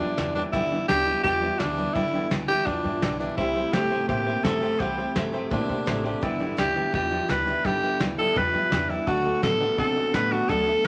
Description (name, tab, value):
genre	rockabilly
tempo	169 BPM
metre	4/4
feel	straight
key	G major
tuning	A4 = 441 Hz
part	raspy tenor saxophone	melody	0.0-10.9 s	D4 to B4	-27 LUFS	equal	none
part	honky-tonk upright piano	accompaniment	0.0-10.9 s	A4 to A5	-38 LUFS	equal	none
part	picked steel-string acoustic guitar	accompaniment	0.0-10.9 s	G2 to G4	-35 LUFS	equal	none
part	electric guitar through a small old amp	riff	0.0-10.9 s	G2 to C4	-33 LUFS	equal	none
part	upright bass	bass	0.0-10.9 s	G1 to C3	-38 LUFS	equal	none
part	soft brush drum kit	drums	0.2-10.9 s	hi-hat, kick drum, snare drum	-33 LUFS	equal	none
room	moderate large studio reverb, RT60 0.9 s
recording	vinyl crackle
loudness	-25 LUFS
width	mono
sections	0.0-10.9 A section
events	none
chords	0.0 G6; 3.4 C6; 6.2 G6; 9.1 D6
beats	0.18 | 0.53 0.89 1.24 1.60 | 1.96 2.31 2.67 3.02 | 3.38 3.73 4.09 4.44 | 4.80 5.16 5.51 5.87 | 6.22 6.58 6.94 7.29 | 7.65 8.00 8.36 8.72 | 9.07 9.43 9.78 10.14 | 10.49 10.85